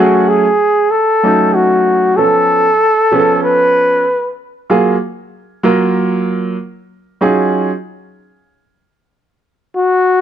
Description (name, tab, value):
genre	hip hop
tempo	95 BPM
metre	4/4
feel	swing 63% on 16ths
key	unclear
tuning	A4 = 440 Hz
part	breathy flugelhorn	melody	0.0-4.3, 9.8-10.2 s	Gb4 to Cb5	-10 LUFS	left 1 dB	none
part	warm upright piano	accompaniment	0.0-7.7 s	F3 to Bb4	-13 LUFS	right 2 dB	none
room	light reverb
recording	none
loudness	-10 LUFS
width	side -9 dB against mid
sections	0.0-10.2 A section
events	none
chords	0.0 Gbmadd9; 2.2 Db7b13; 4.7 Gbmaj7; 7.2 Ebm11